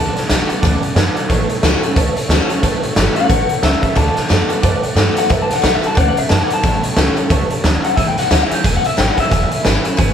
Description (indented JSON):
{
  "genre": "rockabilly",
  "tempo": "180 BPM",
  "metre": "4/4",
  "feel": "swing 59% on 8ths",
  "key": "A major",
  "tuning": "A4 = 440 Hz",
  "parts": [
    { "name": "electric guitar through a small old amp", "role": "melody", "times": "0.0-0.9, 3.2-9.8 s", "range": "E5 to A5", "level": "-19 LUFS", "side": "left 4 dB", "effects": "none" },
    { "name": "honky-tonk upright piano", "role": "accompaniment", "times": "0.0-10.1 s", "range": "B4 to A5", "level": "-26 LUFS", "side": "right 5 dB", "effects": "none" },
    { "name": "picked steel-string acoustic guitar", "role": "accompaniment", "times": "0.0-10.1 s", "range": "E2 to F#4", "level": "-21 LUFS", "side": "left 1 dB", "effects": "none" },
    { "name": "upright bass", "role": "bass", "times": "0.0-10.1 s", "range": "E1 to G2", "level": "-19 LUFS", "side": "equal", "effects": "none" },
    { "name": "raw garage drum kit", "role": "drums", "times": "0.2-10.1 s", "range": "hi-hat, kick drum, snare drum", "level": "-16 LUFS", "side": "equal", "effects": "none" }
  ],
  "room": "light reverb",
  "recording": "band playing live in one room",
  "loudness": "-13 LUFS",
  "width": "side -8 dB against mid",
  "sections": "0.0-10.1 A section",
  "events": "none",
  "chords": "0.0 D6; 1.3 A6; 4.0 D6; 6.6 A6; 8.0 E6"
}